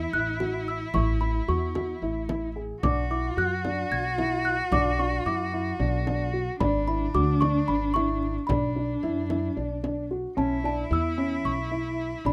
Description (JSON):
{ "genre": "contemporary instrumental, chamber music in an uneven meter", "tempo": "222 BPM (eighths)", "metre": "7/8", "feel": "straight", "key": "B dorian", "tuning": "A4 = 437 Hz", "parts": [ { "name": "small celesta", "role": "melody", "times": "0.0-12.3 s", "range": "A5 to G#6", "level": "-33 LUFS", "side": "equal", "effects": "none" }, { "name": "clear cello", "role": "second line", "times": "0.0-12.3 s", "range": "D4 to F#4", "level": "-33 LUFS", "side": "equal", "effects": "none" }, { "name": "dark concert grand piano", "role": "arpeggios", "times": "0.0-12.3 s", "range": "C#4 to G#4", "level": "-32 LUFS", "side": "equal", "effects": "none" }, { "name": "upright bass", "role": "bass", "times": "0.0-12.3 s", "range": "G#1 to F#2", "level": "-32 LUFS", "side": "equal", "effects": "none" }, { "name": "frame drum", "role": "percussion", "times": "0.4-10.2 s", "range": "none", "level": "-35 LUFS", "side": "equal", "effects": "none" } ], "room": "little or no reverb", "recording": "close, detailed microphones", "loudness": "-27 LUFS", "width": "mono", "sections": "0.0-10.4 A section; 10.4-12.3 B section", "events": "none", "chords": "0.0 A; 2.8 Bm; 6.6 E13/G#; 8.5 Bm; 10.4 Bsus4" }